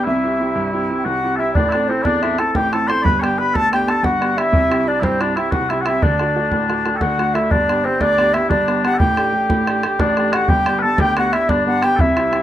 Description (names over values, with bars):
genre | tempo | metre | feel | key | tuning
celtic folk, Celtic slip jig | 121 BPM (dotted quarters) | 9/8 | straight | unclear | A4 = 440 Hz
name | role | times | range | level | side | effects
bright reedy baroque flute | melody | 0.0-12.4 s | C5 to C6 | -20 LUFS | equal | none
mellow small bagpipes | second line | 0.0-12.4 s | C4 to D5 | -21 LUFS | left 3 dB | none
bright baby grand piano | accompaniment | 0.0-12.4 s | G1 to A4 | -20 LUFS | right 2 dB | none
bodhran | percussion | 1.6-12.4 s | none | -21 LUFS | equal | none
room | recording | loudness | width
light reverb | rough home demo mix | -15 LUFS | side -11 dB against mid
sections
0.0-7.5 A section; 7.5-12.4 A section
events
none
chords
0.1 C; 1.5 Am; 3.0 G; 4.5 C; 6.0 D; 7.5 G; 9.0 Dsus4/A; 10.5 G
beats
| 0.05 0.55 1.05 | 1.55 2.04 2.54 | 3.04 3.54 4.03 | 4.53 5.03 5.53 | 6.02 6.52 7.02 | 7.51 8.01 8.51 | 9.00 9.50 10.00 | 10.49 10.99 11.49 | 11.98